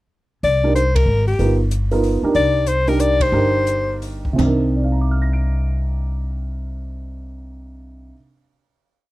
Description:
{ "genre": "jazz, small-group swing and bop", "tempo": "160-188 BPM", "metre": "3/4", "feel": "swing 63% on 8ths", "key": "C minor", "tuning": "A4 = 439 Hz", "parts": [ { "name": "clear alto saxophone", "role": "melody", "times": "0.4-4.0 s", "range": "G4 to D5", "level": "-18 LUFS", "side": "left 3 dB", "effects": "none" }, { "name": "upright bass", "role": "bass", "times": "0.4-8.1 s", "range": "G1 to C2", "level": "-20 LUFS", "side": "equal", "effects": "none" }, { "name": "open jazz drum kit", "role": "drums", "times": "0.4-4.5 s", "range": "hi-hat, kick drum, ride cymbal, splash cymbal, toms", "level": "-25 LUFS", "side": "equal", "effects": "none" }, { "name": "dark upright piano", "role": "accompaniment", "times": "0.6-8.4 s", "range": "C3 to D7", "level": "-22 LUFS", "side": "right 3 dB", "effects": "none" } ], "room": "small room ambience", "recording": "dry, close 1970s-style studio recording", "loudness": "-16 LUFS", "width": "side -17 dB against mid", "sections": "0.4-4.4 A section; 4.4-6.6 final chord", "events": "band accent 0.9, 3.2; slowing down 2.3-4.4", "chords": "0.4 C7sus2; 1.4 G7alt; 2.3 Cm9" }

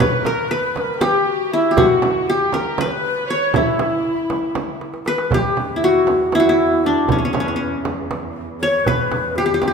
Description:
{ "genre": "Turkish makam ensemble", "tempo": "237 BPM (eighths)", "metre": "7/8", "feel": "straight", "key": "E makam nikriz", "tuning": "A4 = 440 Hz", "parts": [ { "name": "qanun", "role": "melody", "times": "0.0-9.7 s", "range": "C#4 to C#5", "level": "-18 LUFS", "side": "equal", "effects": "none" }, { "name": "breathy bright low ney", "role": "second line", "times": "0.0-9.7 s", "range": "C#4 to C#5", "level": "-24 LUFS", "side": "left 4 dB", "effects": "none" }, { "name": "rich studio violin section", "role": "second line", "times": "0.0-4.8 s", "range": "E4 to C#5", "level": "-28 LUFS", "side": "right 2 dB", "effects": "none" }, { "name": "darbuka", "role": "percussion", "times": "0.0-9.7 s", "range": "none", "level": "-26 LUFS", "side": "right 2 dB", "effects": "none" }, { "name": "frame drum", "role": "percussion", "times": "0.0-9.7 s", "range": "none", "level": "-25 LUFS", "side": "right 5 dB", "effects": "none" }, { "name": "muted chamber cello section", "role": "drone", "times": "5.3-9.7 s", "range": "E2", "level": "-29 LUFS", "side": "right 3 dB", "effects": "none" } ], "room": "wet scoring stage reverb, RT60 1.8 s", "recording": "minimal, uncompressed stereo recording", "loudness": "-16 LUFS", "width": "side -5 dB against mid", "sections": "0.0-5.3 A section; 5.3-9.7 B section", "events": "drum fill 4.8-5.3", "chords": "none" }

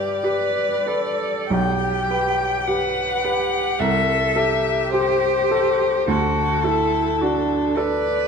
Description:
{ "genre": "classical, slow romantic movement for piano trio", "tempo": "53 BPM", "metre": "4/4", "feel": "rubato", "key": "G major", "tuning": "A4 = 441 Hz", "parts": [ { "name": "warm violin", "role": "melody", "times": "0.0-8.3 s", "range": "A4 to G5", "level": "-21 LUFS", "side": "left 6 dB", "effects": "none" }, { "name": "clear cello", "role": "second line", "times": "0.0-8.3 s", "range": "D4 to B4", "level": "-24 LUFS", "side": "right 7 dB", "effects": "none" }, { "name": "bright baby grand piano", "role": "accompaniment", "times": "0.0-8.3 s", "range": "B1 to B4", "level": "-24 LUFS", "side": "right 2 dB", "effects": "none" } ], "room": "wet recital hall reverb, RT60 1.9 s", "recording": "dark, warm production", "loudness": "-18 LUFS", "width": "side -6 dB against mid", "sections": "0.0-8.3 A section", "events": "none", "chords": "0.0 G; 1.5 G/B; 3.8 Am7/C; 6.1 D" }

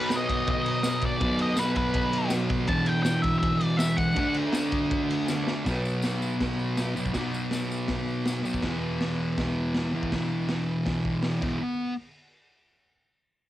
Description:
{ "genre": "garage rock duo or trio", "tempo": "161 BPM", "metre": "4/4", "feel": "straight", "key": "unclear", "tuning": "A4 = 438 Hz", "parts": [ { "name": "octave-fuzz lead guitar", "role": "melody", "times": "0.0-4.3 s", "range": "B4 to A5", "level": "-29 LUFS", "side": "equal", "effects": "distortion" }, { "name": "thick fuzz guitar", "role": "riff", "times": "0.0-11.9 s", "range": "E2 to D4", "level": "-26 LUFS", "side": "equal", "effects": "distortion, cassette tape" }, { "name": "raw garage drum kit", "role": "drums", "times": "0.1-11.5 s", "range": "crash cymbal, hi-hat, kick drum, ride cymbal, snare drum", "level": "-31 LUFS", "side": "equal", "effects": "cassette tape" }, { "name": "tambourine", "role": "percussion", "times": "0.1-8.5 s", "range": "none", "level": "-41 LUFS", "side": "left 4 dB", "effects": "none" } ], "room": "light reverb", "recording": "home recording on cassette", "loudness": "-24 LUFS", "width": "side -14 dB against mid", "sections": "0.0-5.7 A section; 5.7-11.6 B section; 11.6-13.1 C section", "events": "drum fill 5.3-5.7", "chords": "0.0 B; 2.7 E5; 4.2 D5; 5.7 B5; 8.6 E5; 11.6 N.C." }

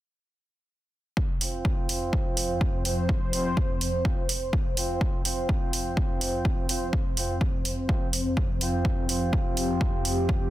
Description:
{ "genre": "bass house", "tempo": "125 BPM", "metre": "4/4", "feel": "swing 61% on 16ths", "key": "unclear", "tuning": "A4 = 439 Hz", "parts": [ { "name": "sweeping resonant pad", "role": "sustained chords", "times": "1.2-10.5 s", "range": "F2 to C5", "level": "-30 LUFS", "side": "left 1 dB", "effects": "chorus, sidechain pumping" }, { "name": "electronic kick drum", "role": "drums", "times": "1.2-10.4 s", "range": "none", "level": "-27 LUFS", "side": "equal", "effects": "overdrive" }, { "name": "brilliant horn section", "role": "stabs", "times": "1.4-10.5 s", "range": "C4 to C5", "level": "-33 LUFS", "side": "right 3 dB", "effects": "sidechain pumping, low-pass filter, dub echo" }, { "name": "electronic hi-hat", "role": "drums", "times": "1.4-10.2 s", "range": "none", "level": "-30 LUFS", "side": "right 2 dB", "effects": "overdrive" } ], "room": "little or no reverb", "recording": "dense, heavily limited modern master", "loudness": "-24 LUFS", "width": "side -14 dB against mid", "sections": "1.2-10.5 A section", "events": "filter sweep on analog synth pad 1.2-10.5", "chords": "1.2 F5" }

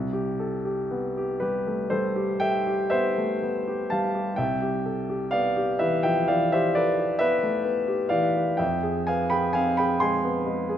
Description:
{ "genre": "classical, impressionist solo piano", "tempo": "38-45 BPM (dotted quarters)", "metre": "9/8", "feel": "rubato", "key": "C major", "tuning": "A4 = 440 Hz", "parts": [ { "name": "warm baby grand piano", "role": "solo", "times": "0.0-10.8 s", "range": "C2 to C6", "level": "-23 LUFS", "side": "equal", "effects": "none" } ], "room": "moderate recital hall reverb, RT60 1.4 s", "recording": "dark, warm production", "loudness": "-22 LUFS", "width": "side -10 dB against mid", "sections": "0.0-10.8 A section", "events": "none", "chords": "0.0 Cmaj7; 4.4 Em7/C; 8.6 Fm" }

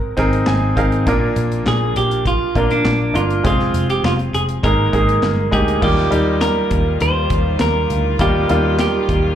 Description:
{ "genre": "piano-driven pop", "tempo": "101 BPM", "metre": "4/4", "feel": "straight", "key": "unclear", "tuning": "A4 = 440 Hz", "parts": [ { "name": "clean electric guitar", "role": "melody", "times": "0.0-9.3 s", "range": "D4 to C5", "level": "-20 LUFS", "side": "right 2 dB", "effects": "plate reverb, slapback echo" }, { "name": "bright concert grand piano", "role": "accompaniment", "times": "0.0-9.3 s", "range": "Ab2 to Ab5", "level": "-19 LUFS", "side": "equal", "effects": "plate reverb, slapback echo" }, { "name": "vintage muted picked electric bass", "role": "bass", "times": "0.2-9.3 s", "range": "F1 to Eb2", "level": "-19 LUFS", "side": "left 1 dB", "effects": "none" }, { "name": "modern studio drum kit", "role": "drums", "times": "0.2-9.2 s", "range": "crash cymbal, handclaps, hi-hat, kick drum, snare drum", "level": "-22 LUFS", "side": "equal", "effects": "none" }, { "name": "warm studio string section", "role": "sustained chords", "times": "5.8-9.3 s", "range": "Eb3 to F4", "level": "-26 LUFS", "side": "left 3 dB", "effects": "plate reverb" } ], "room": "light reverb", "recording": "live gig heard through the venue's PA, club reverb", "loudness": "-14 LUFS", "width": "side -10 dB against mid", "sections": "0.0-5.8 A section; 5.8-9.3 B section", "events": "grand piano fill 0.2-1.1", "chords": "0.0 Abadd9; 1.1 Bb; 3.4 Fm; 4.6 Absus2; 5.8 Ebadd9" }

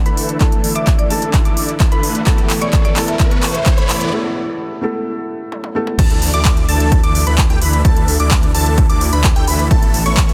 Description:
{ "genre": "EDM, festival progressive house", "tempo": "129 BPM", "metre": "4/4", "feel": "straight", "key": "unclear", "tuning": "A4 = 443 Hz", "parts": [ { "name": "felt-muted upright piano", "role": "accompaniment", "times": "0.0-6.0 s", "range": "A3 to A4", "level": "-26 LUFS", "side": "equal", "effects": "sidechain pumping, digital delay" }, { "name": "lush unison pad", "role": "sustained chords", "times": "0.0-10.3 s", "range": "B2 to A4", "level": "-30 LUFS", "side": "equal", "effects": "none" }, { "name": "riser", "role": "sound effects", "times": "0.7-4.1 s", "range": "none", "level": "-30 LUFS", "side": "equal", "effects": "none" }, { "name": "plucky unison lead", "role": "arpeggios", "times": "0.1-10.3 s", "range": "G5 to D6", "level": "-26 LUFS", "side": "equal", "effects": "sidechain pumping, digital delay" }, { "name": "big supersaw lead", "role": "riff", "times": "0.1-10.3 s", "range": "E3 to D5", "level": "-26 LUFS", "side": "equal", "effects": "phaser, sidechain pumping, low-pass filter, digital delay" }, { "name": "big-room dance drum kit", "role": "drums", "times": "0.1-10.3 s", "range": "crash cymbal, handclaps, hi-hat, toms", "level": "-24 LUFS", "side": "equal", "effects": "high-pass filter on hats, high-pass filter on snare, high-pass filter on toms, high-pass filter on cymbals, high-pass filter on room" }, { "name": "electronic kick drum", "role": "drums", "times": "0.4-10.3 s", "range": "none", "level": "-16 LUFS", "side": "equal", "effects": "none" }, { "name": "marimba with medium hard mallets", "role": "melody", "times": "0.8-3.7 s", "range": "D5 to E5", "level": "-29 LUFS", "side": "equal", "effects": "digital delay" }, { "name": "detuned saw bass", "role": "bass", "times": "6.0-10.3 s", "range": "A1 to D2", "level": "-20 LUFS", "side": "equal", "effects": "chorus, sidechain pumping" } ], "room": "light reverb", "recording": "dense, heavily limited modern master", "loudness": "-15 LUFS", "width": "mono", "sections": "0.0-6.0 A section; 6.0-10.3 B section", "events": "build-up 0.0-6.0; drum fill 0.0-4.1, 5.5-6.0; filter sweep on digital synth lead 0.0-6.0; riser 0.7-4.1; break 4.1-6.0; drop 6.0-10.3", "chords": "0.0 Dsus2; 2.3 Asus2; 6.0 Dsus2; 9.7 Asus2" }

